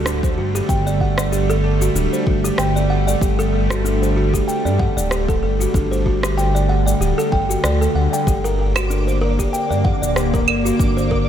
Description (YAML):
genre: organic downtempo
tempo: 95 BPM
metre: 4/4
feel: swing 55% on 16ths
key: unclear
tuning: A4 = 440 Hz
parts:
  - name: bowed-like drone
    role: sustained chords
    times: 0.0-11.3 s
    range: D3 to Bb3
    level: -23 LUFS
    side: equal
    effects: built-in reverb, sidechain pumping
  - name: buzzing kalimba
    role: arpeggios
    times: 0.0-11.3 s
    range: D4 to G5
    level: -22 LUFS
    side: equal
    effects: tape echo
  - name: smooth gliding synth bass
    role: bass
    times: 0.0-11.3 s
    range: D1 to G2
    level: -20 LUFS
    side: equal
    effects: sidechain pumping
  - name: electronic rim click, cabasa and claves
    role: drums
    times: 0.1-11.1 s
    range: none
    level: -24 LUFS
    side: right 1 dB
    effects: studio reverb
  - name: electronic kick drum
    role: drums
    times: 0.2-11.2 s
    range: none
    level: -20 LUFS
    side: equal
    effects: overdrive, studio reverb
  - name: twinkling granular texture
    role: texture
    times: 8.8-11.3 s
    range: D5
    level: -30 LUFS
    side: right 4 dB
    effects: built-in reverb, analog chorus
room: light reverb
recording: none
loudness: -16 LUFS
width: side -10 dB against mid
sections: 0.0-11.3 A section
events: none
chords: 0.0 Dsus4; 8.3 Gm